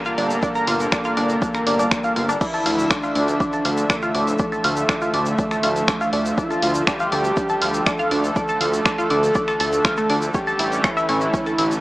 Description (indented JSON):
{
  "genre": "melodic techno",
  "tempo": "121 BPM",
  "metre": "4/4",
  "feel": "straight",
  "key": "D harmonic minor",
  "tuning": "A4 = 437 Hz",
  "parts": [
    { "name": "fat analog lead", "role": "melody", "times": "0.0-11.7 s", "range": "A3 to A4", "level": "-23 LUFS", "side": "equal", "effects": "wide subtle chorus, sidechain pumping, dub echo" },
    { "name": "lush unison pad", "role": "sustained chords", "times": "0.0-11.8 s", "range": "D3 to E5", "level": "-28 LUFS", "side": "equal", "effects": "chorus, sidechain pumping" },
    { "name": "analog drone", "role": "drone", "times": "1.0-11.8 s", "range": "D3", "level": "-34 LUFS", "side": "right 1 dB", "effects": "none" },
    { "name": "tube shaker", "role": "percussion", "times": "0.0-11.8 s", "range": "none", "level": "-38 LUFS", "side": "equal", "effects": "none" },
    { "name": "tight sequenced synth", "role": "arpeggios", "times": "0.1-11.6 s", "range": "A3 to Bb5", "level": "-23 LUFS", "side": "equal", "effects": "chorus, phaser, cassette tape, sidechain pumping, tape echo" },
    { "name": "punchy analog drum machine", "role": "drums", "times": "0.1-11.8 s", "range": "crash cymbal, finger snaps, hi-hat", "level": "-25 LUFS", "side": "equal", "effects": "overdrive, sidechain pumping on hats, sidechain pumping on cymbals" },
    { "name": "dark detuned saw bass", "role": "bass", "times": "0.2-11.8 s", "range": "G1 to D2", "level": "-25 LUFS", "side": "equal", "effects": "sidechain pumping" },
    { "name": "electronic kick drum", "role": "drums", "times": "0.4-11.4 s", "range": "none", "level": "-26 LUFS", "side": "equal", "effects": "none" }
  ],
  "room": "light reverb",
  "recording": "small speaker sound",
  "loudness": "-18 LUFS",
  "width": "side -18 dB against mid",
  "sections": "0.0-11.8 A section",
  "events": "none",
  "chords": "0.0 Gm; 2.4 Dmadd9; 10.3 A",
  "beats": "| 0.43 0.92 1.42 1.91 | 2.41 2.91 3.40 3.90 | 4.39 4.89 5.39 5.88 | 6.38 6.87 7.37 7.87 | 8.36 8.86 9.35 9.85 | 10.34 10.84 11.34"
}